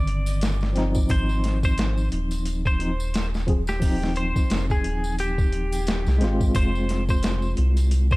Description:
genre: trip hop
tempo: 88 BPM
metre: 4/4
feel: swing 58% on 16ths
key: unclear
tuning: A4 = 440 Hz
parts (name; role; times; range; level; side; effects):
- twelve-string electric guitar; melody; 0.0-8.2 s; G4 to D5; -31 LUFS; equal; tape echo
- tine electric piano; accompaniment; 0.0-8.2 s; D3 to Ab4; -29 LUFS; equal; overdrive, tremolo, tape echo
- round analog bass; bass; 0.0-8.2 s; Eb1 to C2; -24 LUFS; equal; none
- boom bap sampler-style drum kit; drums; 0.1-8.2 s; hi-hat, kick drum, snare drum; -24 LUFS; equal; overdrive, studio reverb
- tambourine and triangle; percussion; 0.3-8.2 s; none; -43 LUFS; equal; none
room: little or no reverb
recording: dark, warm production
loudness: -21 LUFS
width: side -21 dB against mid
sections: 0.0-8.2 A section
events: none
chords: 0.0 Cmadd9; 1.1 Ab6; 6.5 Fm

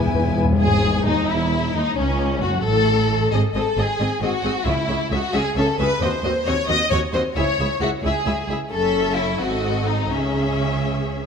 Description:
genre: classical, dramatic, fast romantic movement for symphony orchestra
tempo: 88 BPM (dotted quarters)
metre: 6/8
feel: straight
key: C# minor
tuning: A4 = 439 Hz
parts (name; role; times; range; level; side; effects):
- rich chamber violin section; melody; 0.0-11.3 s; C#4 to G#5; -29 LUFS; left 5 dB; none
- mellow clarinet; second line; 0.0-0.5 s; E4; -35 LUFS; left 2 dB; none
- warm symphonic violin section; second line; 0.0-11.3 s; C#4 to Eb5; -23 LUFS; left 3 dB; none
- warm symphonic viola section; accompaniment; 0.0-11.3 s; B3 to A4; -27 LUFS; equal; none
- rich symphonic double bass section; bass; 0.0-11.3 s; E1 to E2; -26 LUFS; right 2 dB; none
- timpani; percussion; 0.0-0.6, 4.7-5.3 s; E2 to C#3; -23 LUFS; left 2 dB; none
- mellow bassoon; accompaniment; 0.1-0.5 s; E3; -30 LUFS; right 1 dB; none
- warm symphonic cello section; bass; 0.6-11.3 s; C#2 to C#3; -26 LUFS; right 3 dB; none
room: moderate scoring stage reverb, RT60 2.0 s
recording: none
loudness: -18 LUFS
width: side -6 dB against mid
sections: 0.6-11.3 A section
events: timpani fill 0.0-0.6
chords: 0.0 E; 0.6 Emaj7; 2.0 F#m; 3.3 G#; 4.7 C#m; 6.0 Cdim/Eb; 7.4 C#m; 8.7 F#m7; 9.4 G#7b9; 10.1 C#m

